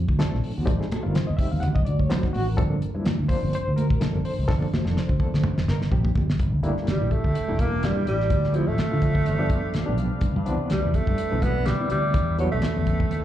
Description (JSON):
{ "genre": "electric jazz fusion", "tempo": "126 BPM", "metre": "4/4", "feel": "swing 55% on 16ths", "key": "unclear", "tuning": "A4 = 439 Hz", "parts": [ { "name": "barky reed electric piano", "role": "accompaniment", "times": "0.0-13.1 s", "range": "Eb3 to F#5", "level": "-30 LUFS", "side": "left 2 dB", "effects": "overdrive, tremolo, slapback echo, plate reverb" }, { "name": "fingered electric bass", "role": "bass", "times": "0.0-13.2 s", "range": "E1 to D3", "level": "-25 LUFS", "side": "equal", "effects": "none" }, { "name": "damped 70s drum kit", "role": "drums", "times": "0.1-13.2 s", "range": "hi-hat, kick drum, snare drum, toms", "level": "-25 LUFS", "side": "equal", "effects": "none" }, { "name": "congas", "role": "percussion", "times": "0.2-13.2 s", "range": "none", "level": "-32 LUFS", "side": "right 2 dB", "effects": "slapback echo" }, { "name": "evolving wavetable pad", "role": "sustained chords", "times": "6.9-13.2 s", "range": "D4 to G5", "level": "-36 LUFS", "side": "left 1 dB", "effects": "phaser, built-in reverb, plate reverb" }, { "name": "warm alto saxophone", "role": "melody", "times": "6.9-13.2 s", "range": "F3 to B3", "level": "-27 LUFS", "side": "right 2 dB", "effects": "slapback echo, tape echo, plate reverb" } ], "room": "light reverb", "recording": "live gig heard through the venue's PA, cassette tape, club reverb", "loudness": "-21 LUFS", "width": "side -12 dB against mid", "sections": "0.0-6.4 A section; 6.4-13.2 B section", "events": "drum fill 4.5-6.4", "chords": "0.0 Bbmaj9; 0.7 Am7b5; 1.6 D7b9; 2.6 Gm11; 6.4 Gm69; 8.3 Dm7; 9.3 G7; 10.2 Cmaj9; 12.1 Em7" }